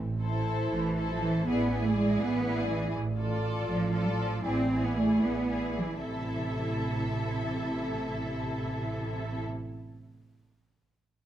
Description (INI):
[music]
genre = quick classical-period movement for string orchestra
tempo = 71-82 BPM (dotted quarters)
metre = 6/8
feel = straight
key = A minor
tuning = A4 = 440 Hz
[part]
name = warm studio double bass section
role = bass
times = 0.0-9.4 s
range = A1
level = -34 LUFS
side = right 2 dB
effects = none
[part]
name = rich studio violin section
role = melody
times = 0.2-9.4 s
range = C5 to E5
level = -40 LUFS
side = left 4 dB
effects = none
[part]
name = rich studio violin section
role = second line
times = 0.2-9.4 s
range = G#4 to A4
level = -38 LUFS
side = left 3 dB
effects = none
[part]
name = rich studio viola section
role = accompaniment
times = 0.2-9.4 s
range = E4 to F4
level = -38 LUFS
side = right 1 dB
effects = none
[part]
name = rich studio cello section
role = bass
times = 0.7-9.4 s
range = C3 to C4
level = -31 LUFS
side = right 2 dB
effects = none
[sound]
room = light reverb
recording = close, detailed microphones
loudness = -28 LUFS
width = side -11 dB against mid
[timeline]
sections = 0.0-6.1 A section; 6.1-9.3 B section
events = slowing down 2.2-6.1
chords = 0.0 Am; 1.5 E7/A; 2.9 Dm/A; 4.4 E7/A; 6.1 Am